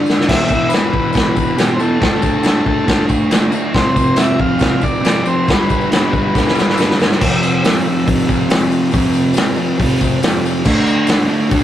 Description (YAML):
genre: garage rock duo or trio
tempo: 139 BPM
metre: 4/4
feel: straight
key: unclear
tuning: A4 = 441 Hz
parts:
  - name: fuzz guitar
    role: riff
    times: 0.0-11.6 s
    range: E2 to D4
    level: -16 LUFS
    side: equal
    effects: distortion
  - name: vintage drum kit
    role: drums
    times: 0.1-11.6 s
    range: crash cymbal, hi-hat, kick drum, snare drum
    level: -15 LUFS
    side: equal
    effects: none
  - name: tambourine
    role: percussion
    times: 0.1-11.4 s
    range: none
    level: -35 LUFS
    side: left 7 dB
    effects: none
  - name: overdriven combo organ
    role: melody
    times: 0.3-7.0 s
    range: G4 to F5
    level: -20 LUFS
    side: left 1 dB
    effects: none
room: moderate studio reverb, RT60 0.5 s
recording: rough rehearsal-room recording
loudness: -12 LUFS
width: side -11 dB against mid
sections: 0.3-7.2 A section; 7.2-11.6 B section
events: drum fill 0.0, 6.3-7.2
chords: 0.3 E5; 2.0 D5; 3.7 F5; 5.5 G; 7.2 F5; 10.7 D5